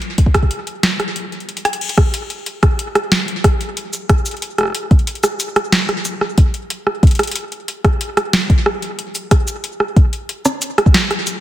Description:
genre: IDM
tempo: 92 BPM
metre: 4/4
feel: straight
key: none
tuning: none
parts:
  - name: booming analog drum machine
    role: drums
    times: 0.0-11.4 s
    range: crash cymbal, hi-hat, rim click, shaker, snare drum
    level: -17 LUFS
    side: right 1 dB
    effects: small room ambience, soft clipping on snare, digital delay
  - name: electronic kick drum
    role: drums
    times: 0.2-11.0 s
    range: none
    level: -12 LUFS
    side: equal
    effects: small room ambience
room: light reverb, digital ambience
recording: dense, heavily limited modern master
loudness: -14 LUFS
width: side -14 dB against mid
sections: 0.0-1.8 A section; 1.8-11.4 B section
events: break 0.5-1.8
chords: none

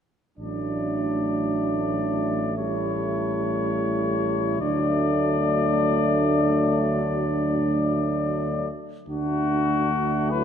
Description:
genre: classical, hymn-like piece for brass band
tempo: 46-60 BPM (dotted quarters)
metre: 6/8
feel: rubato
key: D major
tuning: A4 = 444 Hz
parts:
  - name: clear flugelhorn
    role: melody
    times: 0.4-10.4 s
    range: F#4 to D5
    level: -28 LUFS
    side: left 8 dB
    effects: none
  - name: warm French horn section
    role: second line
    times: 0.4-10.4 s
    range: D4 to E4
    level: -27 LUFS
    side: right 4 dB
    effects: none
  - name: warm trombone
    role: accompaniment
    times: 0.4-10.4 s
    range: F#3 to G3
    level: -30 LUFS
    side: right 2 dB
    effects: none
  - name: warm trombone section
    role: accompaniment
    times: 0.4-10.4 s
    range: A3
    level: -30 LUFS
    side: left 2 dB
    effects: none
  - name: mellow tuba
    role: bass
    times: 0.4-10.4 s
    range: A1 to D2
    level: -28 LUFS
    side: equal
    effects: none
room: wet scoring stage reverb, RT60 1.8 s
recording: lossy compression artefacts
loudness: -21 LUFS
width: side -8 dB against mid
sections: 0.4-9.1 A section; 9.1-10.4 B section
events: none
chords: 0.4 D/A; 2.6 A7; 4.6 D

